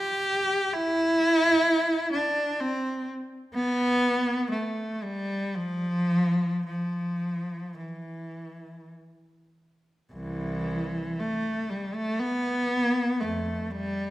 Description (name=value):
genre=classical, free, expressive piece for unaccompanied cello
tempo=43-66 BPM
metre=3/4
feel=rubato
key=unclear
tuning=A4 = 441 Hz
part: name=rich cello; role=solo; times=0.0-14.1 s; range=C2 to G4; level=-25 LUFS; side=equal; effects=none
room=wet recital hall reverb, RT60 1.7 s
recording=none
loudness=-24 LUFS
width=side -15 dB against mid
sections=0.0-10.1 A section; 10.1-14.1 B section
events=none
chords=none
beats=| 0.73 1.66 2.60 | 3.56 4.53 5.57 | 6.67 7.79 8.90 | 10.13 11.21 12.20 | 13.21